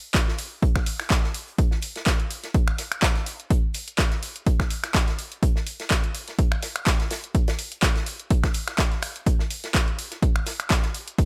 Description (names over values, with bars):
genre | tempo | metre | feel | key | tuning
house | 125 BPM | 4/4 | swing 55% on 16ths | none | none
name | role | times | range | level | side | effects
electronic kick drum | drums | 0.1-11.3 s | none | -24 LUFS | equal | none
punchy analog drum machine | drums | 0.1-11.3 s | finger snaps, handclaps, hi-hat | -30 LUFS | equal | overdrive
unplugged drum kit | drums | 0.1-11.3 s | hi-hat, snare drum | -38 LUFS | equal | sidechain pumping on hats, high-pass filter on hats, high-pass filter on snare, high-pass filter on room
room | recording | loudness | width
little or no reverb | none | -24 LUFS | mono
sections
0.0-11.3 A section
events
none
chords
none